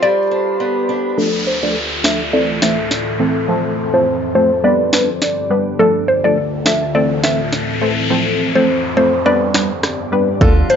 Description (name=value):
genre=dancehall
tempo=104 BPM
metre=4/4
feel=swing 56% on 16ths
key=unclear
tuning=A4 = 440 Hz
part: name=mallet-like synth pluck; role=melody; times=0.0-10.8 s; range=A4 to E5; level=-18 LUFS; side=equal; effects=chorus, low-pass filter, tape echo
part: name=glassy FM pad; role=sustained chords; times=0.0-10.8 s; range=D2 to B5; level=-22 LUFS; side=left 2 dB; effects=ensemble chorus, built-in reverb, sidechain pumping, low-pass filter
part: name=picked swing-style acoustic guitar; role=arpeggios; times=0.0-1.2, 10.4-10.8 s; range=D3 to F4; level=-21 LUFS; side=right 2 dB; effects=tape echo
part: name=punchy chord stab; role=accompaniment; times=1.2-10.8 s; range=E3 to B4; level=-17 LUFS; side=equal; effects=chorus, sidechain pumping, low-pass filter
part: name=downlifter and noise sweep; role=sound effects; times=1.2-10.4 s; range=none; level=-24 LUFS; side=equal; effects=none
part: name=afro-pop drum kit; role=drums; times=2.0-10.8 s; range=finger snaps, hi-hat, kick drum, rim click, snare drum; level=-16 LUFS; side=equal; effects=none
part: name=short 808-style bass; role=bass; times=10.4-10.6 s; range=D2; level=-14 LUFS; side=equal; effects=none
room=moderate digital room reverb, RT60 1.2 s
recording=dry, gritty hardware recording, transformer saturation, nothing above 7.5 kHz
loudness=-13 LUFS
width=side -7 dB against mid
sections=0.0-1.2 A section; 1.2-10.4 B section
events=break 0.0-1.2; filter sweep 1.2-10.4; noise sweep 6.3-10.4; kick muted 9.3-10.4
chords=0.0 G; 1.2 Dm; 2.3 Am; 3.5 F; 4.6 G; 5.8 Dm; 6.9 Am; 8.1 F; 9.3 G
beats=0.03 0.60 | 1.18 1.76 2.33 2.91 | 3.49 4.07 4.64 5.22 | 5.80 6.37 6.95 7.53 | 8.10 8.68 9.26 9.83 | 10.41